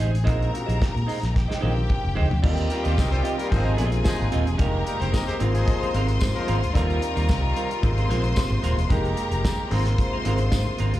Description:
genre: disco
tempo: 111 BPM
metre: 4/4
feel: straight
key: Eb major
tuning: A4 = 443 Hz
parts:
  - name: bright studio string section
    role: second line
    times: 0.0-11.0 s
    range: G4 to C6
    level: -32 LUFS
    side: left 3 dB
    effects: slapback echo
  - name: clean electric guitar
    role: accompaniment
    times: 0.0-11.0 s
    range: G3 to Eb5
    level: -32 LUFS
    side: right 7 dB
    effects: slapback echo
  - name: warm concert grand piano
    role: accompaniment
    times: 0.0-11.0 s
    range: G3 to C5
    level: -33 LUFS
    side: left 4 dB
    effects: slapback echo
  - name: fingered electric bass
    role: bass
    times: 0.0-11.0 s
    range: Eb1 to Bb2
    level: -23 LUFS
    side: equal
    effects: none
  - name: warm soul drum kit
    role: drums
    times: 0.0-11.0 s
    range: crash cymbal, hi-hat, kick drum, snare drum, toms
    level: -25 LUFS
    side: equal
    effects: none
  - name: warm studio string section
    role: sustained chords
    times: 2.4-11.0 s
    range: C3 to G4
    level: -31 LUFS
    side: equal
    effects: none
  - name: clear horn section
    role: stabs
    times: 2.7-6.6 s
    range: F3 to Eb5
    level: -31 LUFS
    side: left 2 dB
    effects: slapback echo
  - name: tambourine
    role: percussion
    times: 3.0-10.7 s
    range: none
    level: -40 LUFS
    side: left 2 dB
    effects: none
room: small room ambience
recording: live gig heard through the venue's PA, club reverb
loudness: -20 LUFS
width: side -14 dB against mid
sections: 0.0-2.4 A section; 2.4-11.0 B section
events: drum fill 1.4-2.4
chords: 0.3 Bb9sus4; 2.4 Eb69; 3.5 Ab69; 4.6 Fm11; 5.4 Ab69; 6.8 Eb69; 7.8 Ab69; 8.9 Fm11; 9.7 Ab69

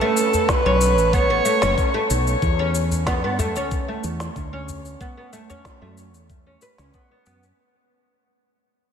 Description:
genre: organic downtempo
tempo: 93 BPM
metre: 4/4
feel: straight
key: unclear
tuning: A4 = 440 Hz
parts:
  - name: dark kamancheh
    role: melody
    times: 0.0-2.1 s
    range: A4 to C#5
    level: -22 LUFS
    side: right 1 dB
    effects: ping-pong delay
  - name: oud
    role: arpeggios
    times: 0.0-7.6 s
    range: A3 to B4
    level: -25 LUFS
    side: equal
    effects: low-pass filter, analog delay
  - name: electronic shaker and snare drum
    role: drums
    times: 0.2-7.6 s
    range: none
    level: -28 LUFS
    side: left 1 dB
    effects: none
  - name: udu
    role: percussion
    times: 0.3-5.6 s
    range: none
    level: -29 LUFS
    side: left 1 dB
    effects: none
  - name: electronic kick drum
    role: drums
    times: 0.5-7.1 s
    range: none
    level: -24 LUFS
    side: equal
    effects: none
  - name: woody fretless electric bass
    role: bass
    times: 0.7-7.5 s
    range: F#1 to G2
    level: -24 LUFS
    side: equal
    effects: analog chorus, sidechain pumping
room: wet cathedral reverb, RT60 6.3 s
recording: dreamy mix soaked in reverb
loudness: -18 LUFS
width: side -7 dB against mid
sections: 0.0-7.6 A section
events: fade-out 0.0-7.6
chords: 0.0 Bsus2; 2.4 Em7; 5.0 F#m7

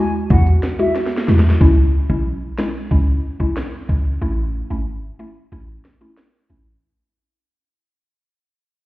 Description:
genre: dancehall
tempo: 92 BPM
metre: 4/4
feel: straight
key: C# minor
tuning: A4 = 440 Hz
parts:
  - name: baroque flute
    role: melody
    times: 0.0-0.9 s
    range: E5 to G#5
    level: -26 LUFS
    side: equal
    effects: digital delay
  - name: mallet-like synth pluck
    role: accompaniment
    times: 0.0-6.7 s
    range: G#3 to F#4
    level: -22 LUFS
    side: left 1 dB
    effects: chorus, phaser
  - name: warm 808-style bass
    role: bass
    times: 0.3-6.8 s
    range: G#1 to E2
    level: -16 LUFS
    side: equal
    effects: none
  - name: island pop drum kit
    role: drums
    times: 0.3-6.3 s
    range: hi-hat, kick drum, rim click, snare drum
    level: -19 LUFS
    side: equal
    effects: none
room: digital ambience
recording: heard muffled through a wall, stone room reverb, EQ, nothing above 10.4 kHz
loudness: -15 LUFS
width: side -18 dB against mid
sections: 0.0-1.6 A section; 1.6-6.8 B section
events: drum fill 1.0-1.6; fade-out 1.6-6.8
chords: 0.0 Eadd9; 1.6 C#m; 4.2 A

